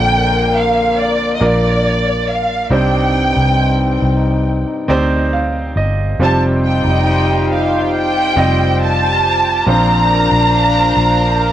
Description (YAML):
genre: pop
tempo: 69 BPM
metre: 4/4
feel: straight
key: Bb major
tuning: A4 = 440 Hz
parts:
  - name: warm studio violin section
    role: melody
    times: 0.0-11.5 s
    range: D5 to Bb5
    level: -16 LUFS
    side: right 1 dB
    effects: none
  - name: mellow French horn section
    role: second line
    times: 0.0-11.5 s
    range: F2 to Eb4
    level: -20 LUFS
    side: left 3 dB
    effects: cassette tape
  - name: clear baby grand piano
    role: accompaniment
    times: 0.0-11.5 s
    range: Bb2 to G5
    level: -19 LUFS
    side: right 2 dB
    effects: cassette tape
  - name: vintage muted fingered electric bass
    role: bass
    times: 0.0-11.5 s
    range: F1 to D2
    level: -17 LUFS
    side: equal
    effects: none
  - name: chorused pulse-width pad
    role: sustained chords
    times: 6.2-11.5 s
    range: D4 to G5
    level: -22 LUFS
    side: equal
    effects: cassette tape
room: small room ambience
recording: home recording on cassette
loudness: -12 LUFS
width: side -11 dB against mid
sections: 0.0-11.5 A section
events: grand piano fill 4.5-6.2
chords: 0.0 Bb; 2.7 Cmadd9; 6.2 Fsus2; 9.7 Bbadd9